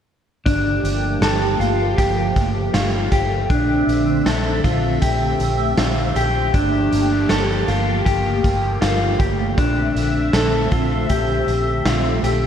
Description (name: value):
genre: dream pop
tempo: 79 BPM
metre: 4/4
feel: straight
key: G dorian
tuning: A4 = 441 Hz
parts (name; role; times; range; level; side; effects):
- phased analog pad; sustained chords; 0.5-12.5 s; D3 to E5; -23 LUFS; right 2 dB; phaser, chorus
- mellow electric guitar; arpeggios; 0.5-12.5 s; D4 to A4; -20 LUFS; left 1 dB; lush chorus, ping-pong delay
- vintage muted fingered electric bass; bass; 0.5-12.5 s; G1 to Bb1; -22 LUFS; equal; none
- raw garage drum kit; drums; 0.5-12.4 s; hi-hat, kick drum, snare drum; -22 LUFS; equal; gated reverb
room: moderate lush hall reverb, RT60 2.5 s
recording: bright 1980s-style digital production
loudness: -16 LUFS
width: side -8 dB against mid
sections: 0.5-12.5 A section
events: none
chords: 0.5 Gm9; 3.5 Bbmaj9#11; 6.5 Gm9; 9.6 Bbmaj9#11